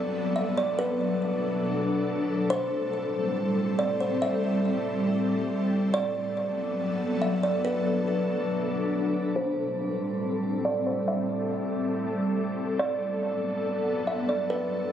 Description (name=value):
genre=hip hop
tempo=140 BPM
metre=4/4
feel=half-time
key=A dorian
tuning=A4 = 440 Hz
part: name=kalimba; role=melody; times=0.0-14.9 s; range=B4 to E5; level=-29 LUFS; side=right 1 dB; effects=low-pass filter, ping-pong delay
part: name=ethereal airy pad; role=sustained chords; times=0.0-14.9 s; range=G2 to A4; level=-27 LUFS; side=left 1 dB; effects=ensemble chorus, built-in reverb, tremolo, low-pass filter
room=moderate shimmer reverb, RT60 7.1 s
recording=recorded on a phone in the room, club reverb, compression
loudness=-25 LUFS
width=side -9 dB against mid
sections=0.0-9.4 A section; 9.4-14.9 B section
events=filter sweep 9.4-14.9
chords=0.0 Gmaj9; 0.8 Bm7; 2.5 Am7; 5.9 Gmaj9; 7.6 Bm7; 9.4 Am7; 12.8 Gmaj9